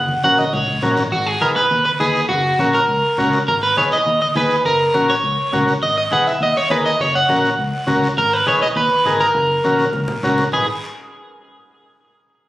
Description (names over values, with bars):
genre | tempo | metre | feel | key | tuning
latin, cumbia | 204 BPM | 4/4 | straight | G# minor | A4 = 441 Hz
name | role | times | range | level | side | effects
electric guitar at the edge of break-up | melody | 0.0-10.7 s | F#4 to F#5 | -16 LUFS | right 1 dB | spring reverb, tape echo
fingered electric bass | bass | 0.0-10.7 s | F#1 to D#2 | -25 LUFS | equal | none
congas | percussion | 0.1-10.6 s | none | -29 LUFS | equal | none
overdriven combo organ | accompaniment | 0.2-10.7 s | C#4 to B4 | -20 LUFS | left 1 dB | none
guiro | percussion | 0.2-10.6 s | none | -34 LUFS | left 1 dB | none
room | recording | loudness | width
light reverb | recorded on a phone in the room, studio reverb | -14 LUFS | side -16 dB against mid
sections
0.0-1.1 A section; 1.1-10.5 B section; 10.5-11.7 C section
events
drum fill 0.0-1.1, 9.8-10.5; clean electric guitar solo 0.0-1.1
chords
0.0 F#; 1.1 G#m; 2.3 F#; 3.5 G#m; 4.6 F#; 5.8 G#m; 7.0 F#; 8.2 G#m; 9.3 F#; 10.5 G#m